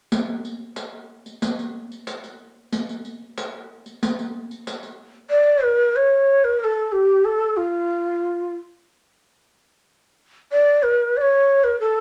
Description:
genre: Persian modal ensemble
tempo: 92 BPM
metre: 4/4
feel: straight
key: D avaz esfahan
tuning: A4 = 440 Hz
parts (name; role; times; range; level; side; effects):
- riq; percussion; 0.1-4.9 s; none; -30 LUFS; equal; none
- breathy ney; melody; 5.3-12.0 s; F4 to D5; -19 LUFS; equal; none
room: wet studio reverb, RT60 0.6 s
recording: none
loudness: -20 LUFS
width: mono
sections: 0.1-5.3 A section; 5.3-12.0 B section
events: none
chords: none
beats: | 0.12 0.77 1.42 2.06 | 2.72 3.37 4.02 4.67 | 5.32 5.97 6.62 7.27 | 7.92 8.57 9.22 9.88 | 10.53 11.18 11.83

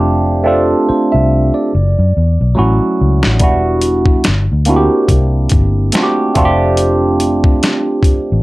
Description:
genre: R&B, neo-soul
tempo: 71 BPM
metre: 4/4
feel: swing 58% on 16ths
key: unclear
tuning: A4 = 440 Hz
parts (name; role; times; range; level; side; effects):
- barky tine electric piano; accompaniment; 0.0-8.4 s; F#3 to E5; -13 LUFS; right 1 dB; phaser, plate reverb
- vintage muted fingered electric bass; bass; 0.0-8.4 s; E1 to F#2; -14 LUFS; left 1 dB; none
- boom bap sampler-style drum kit; drums; 3.2-8.3 s; hi-hat, kick drum, snare drum; -13 LUFS; left 1 dB; none
room: light reverb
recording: none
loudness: -10 LUFS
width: side -19 dB against mid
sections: 0.0-8.4 A section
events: drum fill 1.7-3.4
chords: 0.0 F69; 1.7 F#m7; 3.4 Em9; 4.2 G5; 5.1 C9; 6.4 F69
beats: | 0.03 0.87 1.72 2.56 | 3.40 4.25 5.09 5.94 | 6.79 7.63

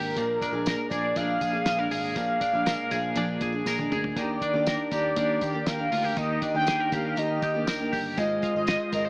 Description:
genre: jangly indie pop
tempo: 120 BPM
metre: 4/4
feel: straight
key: Eb major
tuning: A4 = 439 Hz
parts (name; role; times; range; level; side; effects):
- warm velvety synth lead; melody; 0.0-9.1 s; Bb4 to G5; -28 LUFS; equal; chorus
- picked twelve-string acoustic guitar; accompaniment; 0.0-9.1 s; Bb2 to Eb5; -32 LUFS; equal; none
- twelve-string electric guitar; arpeggios; 0.0-9.1 s; Bb2 to Eb5; -30 LUFS; equal; tremolo
- vintage muted picked electric bass; bass; 0.0-9.1 s; G1 to Eb2; -34 LUFS; equal; none
- cloth-damped thuddy drum kit; drums; 0.2-9.0 s; hi-hat, kick drum, snare drum, toms; -32 LUFS; equal; none
- tambourine; percussion; 0.2-9.0 s; none; -43 LUFS; left 1 dB; none
- lush unison pad; sustained chords; 4.2-9.1 s; Eb3 to C5; -39 LUFS; equal; none
room: light reverb, small room ambience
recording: small speaker sound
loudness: -24 LUFS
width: side -34 dB against mid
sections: 0.0-9.1 A section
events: drum fill 3.7-4.2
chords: 0.2 Bb7; 4.2 Ebmaj7; 8.2 Ab6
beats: | 0.16 0.66 1.16 1.66 | 2.16 2.67 3.17 3.67 | 4.17 4.67 5.17 5.67 | 6.17 6.68 7.18 7.68 | 8.18 8.68

